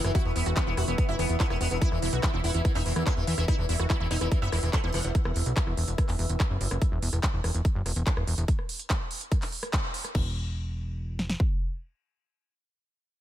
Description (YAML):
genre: psychedelic trance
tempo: 144 BPM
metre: 4/4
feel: straight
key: unclear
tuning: A4 = 440 Hz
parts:
  - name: sitar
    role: melody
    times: 0.0-5.1 s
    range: E3 to F#4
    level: -34 LUFS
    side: left 2 dB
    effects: phaser, sidechain pumping, digital delay
  - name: bubbling stepped-filter texture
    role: sustained chords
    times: 0.0-6.9 s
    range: E3 to B3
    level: -38 LUFS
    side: equal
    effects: chorus, built-in reverb, sidechain pumping
  - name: plucky analog bass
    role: bass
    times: 0.0-11.4 s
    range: E1 to E2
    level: -28 LUFS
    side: equal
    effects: none
  - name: techno drum kit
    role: drums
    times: 0.0-10.2 s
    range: crash cymbal, handclaps, hi-hat, rim click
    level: -34 LUFS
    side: right 1 dB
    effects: none
  - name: airy breathy pad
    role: texture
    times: 0.0-6.8 s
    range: E4 to E6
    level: -39 LUFS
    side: equal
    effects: chorus, sidechain pumping
  - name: wide unison pluck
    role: riff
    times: 0.1-5.0 s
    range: E4 to F#5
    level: -36 LUFS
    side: right 1 dB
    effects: auto-pan, sidechain pumping, digital delay
  - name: big-room dance drum kit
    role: drums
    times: 0.1-11.5 s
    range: kick drum, snare drum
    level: -27 LUFS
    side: equal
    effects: overdrive
room: digital ambience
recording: none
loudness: -25 LUFS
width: side -12 dB against mid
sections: 0.0-10.1 A section; 10.1-13.2 B section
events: drop 0.0-10.1; band accent 9.7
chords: 0.0 E5; 10.1 N.C.